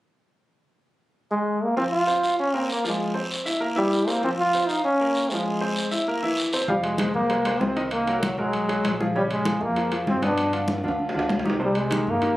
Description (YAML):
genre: latin, salsa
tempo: 195 BPM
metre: 4/4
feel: straight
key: F minor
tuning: A4 = 441 Hz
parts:
  - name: bright trombone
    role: melody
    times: 1.3-12.4 s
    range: Gb3 to F4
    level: -23 LUFS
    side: equal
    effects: none
  - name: bright upright piano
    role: accompaniment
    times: 1.8-12.3 s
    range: B2 to F5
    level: -27 LUFS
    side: equal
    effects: none
  - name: guiro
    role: percussion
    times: 1.8-6.7 s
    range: none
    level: -32 LUFS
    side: equal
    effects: none
  - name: upright bass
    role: bass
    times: 6.7-12.4 s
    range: F1 to G2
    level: -33 LUFS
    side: equal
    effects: none
  - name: congas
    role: percussion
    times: 6.7-12.4 s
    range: none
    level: -29 LUFS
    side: left 2 dB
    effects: none
  - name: timbales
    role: percussion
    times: 6.8-12.4 s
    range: none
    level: -32 LUFS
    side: right 2 dB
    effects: none
room: light reverb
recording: recorded on a phone in the room, club reverb, compression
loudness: -21 LUFS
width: side -16 dB against mid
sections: 0.5-1.8 A section; 1.8-6.7 B section; 6.7-12.4 C section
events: drum fill 10.7-11.6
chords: 0.5 N.C.; 1.8 F5; 2.4 Bb5; 3.0 F5; 3.6 C7; 4.2 F5; 4.8 Bbm; 5.5 Fm; 6.1 C7; 6.7 Fm7; 7.9 Cm7b5; 8.5 B5; 9.2 Bbm7; 10.4 G7; 11.6 Cm7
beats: | 0.54 0.85 1.15 1.46 | 1.77 2.08 2.38 2.69 | 3.00 3.31 3.61 3.92 | 4.23 4.54 4.84 5.15 | 5.46 5.77 6.08 6.38 | 6.69 7.00 7.30 7.61 | 7.92 8.23 8.54 8.84 | 9.15 9.46 9.77 10.07 | 10.38 10.69 11.00 11.30 | 11.61 11.92 12.23